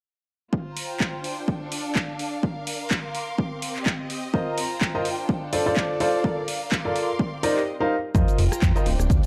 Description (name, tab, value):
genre	piano house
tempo	126 BPM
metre	4/4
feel	swing 56% on 16ths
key	unclear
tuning	A4 = 440 Hz
part	electronic kick drum	drums	0.5-9.2 s	none	-27 LUFS	equal	overdrive, high-pass filter on kick, high-pass filter on room
part	warm studio string section	texture	0.5-9.3 s	C4 to D6	-34 LUFS	equal	sidechain pumping
part	punchy analog drum machine	drums	0.8-9.3 s	handclaps, hi-hat, rim click, shaker	-32 LUFS	equal	none
part	bright upright piano	riff	4.3-8.8 s	Eb4 to F5	-28 LUFS	equal	sidechain pumping, low-pass filter, digital delay
part	fat analog bass	bass	8.1-9.2 s	D1 to F2	-24 LUFS	equal	sidechain pumping
room	light reverb, digital ambience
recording	dark, warm production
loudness	-25 LUFS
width	mono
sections	0.5-8.1 A section; 8.1-9.3 B section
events	none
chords	0.5 Fsus4; 1.2 Dm7; 2.4 Bb; 3.4 Cm9; 4.3 F7sus4; 5.1 Dm7; 6.2 Bbmaj7; 7.2 Cm9; 8.1 F7sus4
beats	| 0.53 1.00 1.48 1.96 | 2.43 2.91 3.38 3.86 | 4.34 4.81 5.29 5.77 | 6.24 6.72 7.20 7.67 | 8.15 8.62 9.10